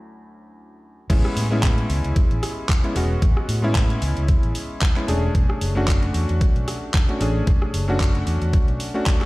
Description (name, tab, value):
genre	nu-disco, nu disco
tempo	113 BPM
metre	4/4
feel	swing 56% on 16ths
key	A major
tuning	A4 = 440 Hz
part	warm electric grand piano	accompaniment	0.0-9.3 s	D2 to G#4	-26 LUFS	left 1 dB	sidechain pumping, analog delay
part	fingered electric bass	bass	1.1-8.8 s	E1 to A2	-22 LUFS	equal	none
part	electronic kick drum	drums	1.1-9.2 s	none	-18 LUFS	equal	overdrive
part	pop drum kit	drums	1.1-9.3 s	crash cymbal, handclaps, hi-hat, rim click	-29 LUFS	equal	overdrive
room	little or no reverb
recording	played on a big sound system in a bare room, stone room reverb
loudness	-18 LUFS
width	side -20 dB against mid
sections	0.0-1.1 A section; 1.1-9.3 B section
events	drop 1.1-9.3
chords	0.0 Dmaj7; 1.1 Amaj7; 5.3 Bm7 (rootless)